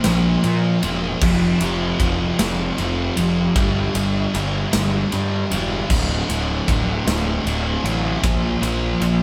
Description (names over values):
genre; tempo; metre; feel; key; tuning
post-rock; 51 BPM (dotted quarters); 6/8; straight; D minor; A4 = 440 Hz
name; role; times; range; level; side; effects
sludgy distorted guitar; riff; 0.0-9.2 s; D2 to Bb3; -23 LUFS; equal; overdrive
big rock drum kit; drums; 0.0-9.2 s; crash cymbal, kick drum, ride cymbal, snare drum; -26 LUFS; equal; none
fuzz picked electric bass; bass; 0.1-9.2 s; D1 to Bb2; -26 LUFS; equal; overdrive
room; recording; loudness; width
light reverb; band playing live in one room; -20 LUFS; mono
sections
0.0-9.2 A section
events
none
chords
0.0 Bb5; 1.2 F5; 3.6 G5; 5.9 D5; 8.2 Bb5